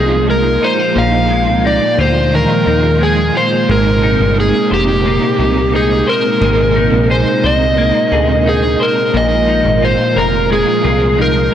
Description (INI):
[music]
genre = dream pop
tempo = 88 BPM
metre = 4/4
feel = straight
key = unclear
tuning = A4 = 440 Hz
[part]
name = overdriven slide guitar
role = melody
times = 0.0-11.5 s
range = G4 to F5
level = -14 LUFS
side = equal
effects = digital delay
[part]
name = crunchy overdriven guitar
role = accompaniment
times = 0.0-11.5 s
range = Bb2 to Bb4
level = -22 LUFS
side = right 4 dB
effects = tremolo, ensemble chorus
[part]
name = string machine, violas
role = sustained chords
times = 0.0-11.5 s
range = Bb2 to G5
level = -18 LUFS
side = equal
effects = ensemble chorus
[part]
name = semi-hollow electric guitar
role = arpeggios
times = 0.0-11.5 s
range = Bb2 to C5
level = -19 LUFS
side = left 1 dB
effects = ensemble chorus, digital delay
[part]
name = plucky analog bass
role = bass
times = 0.0-11.5 s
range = F1 to Eb2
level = -16 LUFS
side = equal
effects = none
[sound]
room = moderate huge ambient reverb, RT60 3.8 s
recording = dark, warm production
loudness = -10 LUFS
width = side -10 dB against mid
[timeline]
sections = 0.0-11.5 A section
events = none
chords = 0.0 Bb7sus4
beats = 0.28 | 0.96 1.64 2.32 3.00 | 3.69 4.37 5.05 5.73 | 6.41 7.10 7.78 8.46 | 9.14 9.82 10.51 11.19